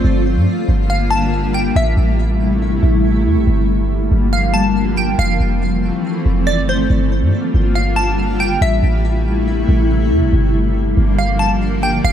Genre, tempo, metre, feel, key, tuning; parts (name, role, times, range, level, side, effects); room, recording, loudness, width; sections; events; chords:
hip hop, atmospheric cloud-rap; 140 BPM; 4/4; half-time; G dorian; A4 = 440 Hz
glassy wavetable pluck; melody; 0.0-12.1 s; C5 to A5; -21 LUFS; equal; chorus, digital delay
granular cloud pad; sustained chords; 0.0-12.1 s; C3 to F4; -18 LUFS; left 1 dB; built-in reverb
warm 808-style bass; bass; 0.0-12.1 s; F1 to G2; -16 LUFS; equal
light reverb, digital ambience; dark, warm production; -13 LUFS; side -10 dB against mid
0.0-10.3 A section; 10.3-12.1 B section
0.0 Gm7; 1.8 Am7; 3.5 Gm7; 5.2 Fmaj7; 6.9 Gm7; 8.6 Am7; 10.3 Gm7